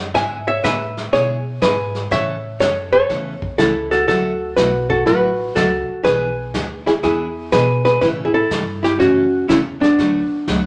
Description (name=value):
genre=country, western swing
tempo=122 BPM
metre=4/4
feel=swing 66% on 8ths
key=D major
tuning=A4 = 440 Hz
part: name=archtop guitar, miked and amplified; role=melody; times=0.0-10.7 s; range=D4 to G#5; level=-20 LUFS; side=equal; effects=none
part: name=archtop guitar, miked and amplified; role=second line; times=0.0-10.7 s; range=B3 to E5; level=-25 LUFS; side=equal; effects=none
part: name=upright bass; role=bass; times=0.0-10.7 s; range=A1 to B2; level=-30 LUFS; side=equal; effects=none
part: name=picked steel-string acoustic guitar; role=accompaniment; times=0.1-10.6 s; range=C#3 to B4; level=-28 LUFS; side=equal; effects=none
part: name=vintage brush drum kit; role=drums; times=0.1-10.7 s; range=brushed snare drum, hi-hat, kick drum, snare drum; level=-28 LUFS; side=equal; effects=none
room=moderate large studio reverb, RT60 0.9 s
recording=none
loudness=-18 LUFS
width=mono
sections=0.0-10.7 A section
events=none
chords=0.1 E7/G#; 2.1 A; 4.1 Dadd9; 6.0 E7; 8.0 A; 10.0 D6